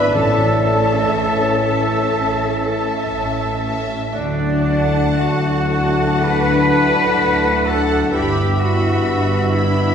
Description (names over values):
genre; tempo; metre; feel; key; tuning
classical, slow romantic movement for symphony orchestra; 54-66 BPM; 4/4; rubato; D major; A4 = 440 Hz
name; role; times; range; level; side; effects
warm studio violin section; melody; 0.0-9.9 s; A5 to B5; -28 LUFS; left 3 dB; none
bright clarinet; second line; 0.0-9.9 s; D4 to B4; -27 LUFS; left 3 dB; none
clear oboe; second line; 0.0-9.9 s; E5 to F#5; -28 LUFS; right 1 dB; none
hollow concert flute; second line; 0.0-9.9 s; D5 to B5; -26 LUFS; equal; none
warm symphonic violin section; second line; 0.0-9.9 s; E5 to F#5; -28 LUFS; left 1 dB; none
mellow bassoon; accompaniment; 0.0-9.9 s; A3 to D4; -25 LUFS; equal; none
warm studio viola section; accompaniment; 0.0-9.9 s; C#4 to D4; -26 LUFS; left 2 dB; none
mellow French horn section; sustained chords; 0.0-9.9 s; A3 to E4; -25 LUFS; left 3 dB; none
warm trombone section; sustained chords; 0.0-9.9 s; G2 to G3; -26 LUFS; right 1 dB; none
rich studio cello section; bass; 0.0-9.9 s; D4 to B4; -22 LUFS; equal; none
rich symphonic double bass section; bass; 0.0-9.8 s; G1 to D2; -21 LUFS; right 1 dB; none
timpani; percussion; 0.1-1.6 s; A2; -25 LUFS; right 1 dB; none
room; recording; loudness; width
wet recital hall reverb, RT60 1.7 s; recorded in a church or concert hall; -15 LUFS; side -7 dB against mid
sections
0.0-9.9 A section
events
none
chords
0.1 A; 4.1 D; 8.1 G6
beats
| 0.15 1.13 2.12 3.13 | 4.14 5.17 6.24 7.19 | 8.12 9.05